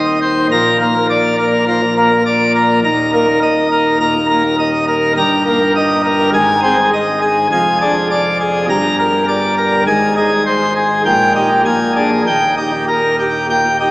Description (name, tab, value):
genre	classical, organ toccata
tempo	102 BPM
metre	4/4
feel	straight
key	Eb major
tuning	A4 = 440 Hz
part	pipe organ, plenum	solo	0.0-13.9 s	Eb1 to Bb5	-11 LUFS	equal	none
room	wet church reverb, RT60 3.5 s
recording	heard from further back in the room, small speaker sound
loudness	-11 LUFS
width	side -21 dB against mid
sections	0.0-13.9 A section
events	none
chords	0.0 Cm/Eb; 0.5 Bb; 2.8 Eb5; 5.2 Eb/G; 6.3 Ab; 7.5 Ddim/F; 8.7 Gm; 9.9 Ab; 11.1 Eb/Bb; 11.7 Bb7; 12.3 Eb